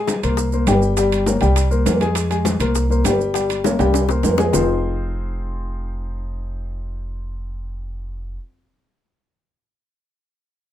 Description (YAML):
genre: Afro-Cuban jazz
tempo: 202 BPM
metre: 4/4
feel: straight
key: F minor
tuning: A4 = 440 Hz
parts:
  - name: warm baby grand piano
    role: accompaniment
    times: 0.0-8.4 s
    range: F3 to Ab5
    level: -21 LUFS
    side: left 3 dB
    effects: none
  - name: bongos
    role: percussion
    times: 0.1-4.6 s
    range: none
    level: -28 LUFS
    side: left 7 dB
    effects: none
  - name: congas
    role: percussion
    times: 0.1-4.6 s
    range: none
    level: -25 LUFS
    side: left 2 dB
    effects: none
  - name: maracas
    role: percussion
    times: 0.1-4.6 s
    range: none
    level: -31 LUFS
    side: right 6 dB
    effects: none
  - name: timbales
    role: percussion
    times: 0.1-4.6 s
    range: none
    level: -25 LUFS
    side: right 5 dB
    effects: none
  - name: upright bass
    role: bass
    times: 0.2-8.4 s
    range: F1 to F2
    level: -21 LUFS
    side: equal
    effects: none
room: moderate small room reverb, RT60 0.6 s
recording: band playing live in one room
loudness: -16 LUFS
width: side -11 dB against mid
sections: 0.0-4.5 A section; 4.5-6.9 B section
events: drum fill 3.6-4.5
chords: 0.4 C5; 1.0 Gdim; 1.6 C5; 2.2 Fm; 2.8 C5; 3.3 Gdim; 3.9 C5; 4.5 Fm7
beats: 0.08 0.38 0.67 | 0.97 1.27 1.56 1.86 | 2.16 2.45 2.75 3.05 | 3.34 3.64 3.94 4.23 | 4.53 4.83 5.12 5.42 | 5.72 6.01 6.31 6.61